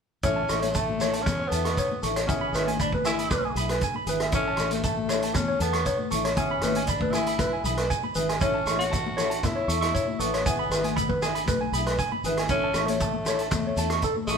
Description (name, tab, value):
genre	highlife guitar band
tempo	118 BPM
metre	4/4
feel	straight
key	A major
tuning	A4 = 440 Hz
part	raspy tenor saxophone	melody	0.2-14.4 s	G#3 to F#4	-30 LUFS	left 1 dB	none
part	electric guitar at the edge of break-up	accompaniment	0.2-14.4 s	B3 to A4	-33 LUFS	left 4 dB	none
part	barky tine electric piano	arpeggios	0.2-14.4 s	A4 to C#6	-28 LUFS	right 3 dB	medium stereo tremolo
part	fingered electric bass	bass	0.2-14.4 s	G#1 to E2	-32 LUFS	equal	none
part	vintage drum kit	drums	0.2-14.4 s	hi-hat, kick drum, rim click	-30 LUFS	right 1 dB	none
part	shekere	percussion	0.2-14.4 s	none	-35 LUFS	right 1 dB	none
part	congas	percussion	0.6-14.4 s	none	-34 LUFS	left 9 dB	none
room	moderate stone room reverb, RT60 1.0 s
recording	band playing live in one room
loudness	-23 LUFS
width	side -6 dB against mid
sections	0.2-14.4 A section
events	none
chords	0.2 A; 2.3 E/G#; 4.3 A; 6.4 E/G#; 8.4 A; 10.5 E/G#; 12.5 A